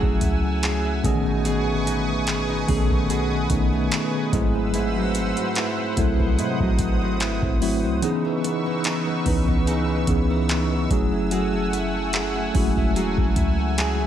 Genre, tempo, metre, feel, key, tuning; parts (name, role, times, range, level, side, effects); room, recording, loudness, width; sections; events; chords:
contemporary R&B; 73 BPM; 4/4; swing 54% on 16ths; C# minor; A4 = 441 Hz
mellow tine electric piano; accompaniment; 0.0-14.1 s; D3 to G#5; -24 LUFS; left 1 dB; medium stereo tremolo
lush unison pad; sustained chords; 0.0-14.1 s; A3 to E6; -29 LUFS; equal; chorus, sidechain pumping
nylon-string guitar; arpeggios; 0.0-14.1 s; G#2 to G#4; -29 LUFS; right 3 dB; tape echo
clean 808-style bass; bass; 0.0-14.1 s; E1 to B#2; -26 LUFS; equal
booming analog drum machine; drums; 0.0-14.0 s; handclaps, hi-hat, kick drum; -24 LUFS; equal; vintage 12-bit sampler grit
light reverb; -20 LUFS; side -10 dB against mid
0.0-14.1 A section
kick muted 8.0-8.8; tine electric piano fill 13.4-14.1
0.0 F#m9; 1.0 B13; 4.3 G#7b9b13; 8.0 C#m9; 10.9 F#m9